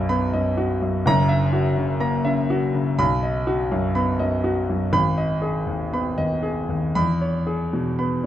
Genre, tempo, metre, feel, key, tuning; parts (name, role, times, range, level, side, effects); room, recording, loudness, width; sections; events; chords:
classical, romantic character piece for solo piano; 57-63 BPM; 4/4; rubato; B major; A4 = 445 Hz
warm grand piano; solo; 0.0-8.3 s; F#1 to B5; -20 LUFS; equal
moderate recital hall reverb, RT60 1.4 s; close, detailed microphones; -20 LUFS; side -12 dB against mid
0.0-8.3 A section
0.0 B; 1.1 F#7; 3.0 B; 4.9 G#m; 7.0 C#m7/E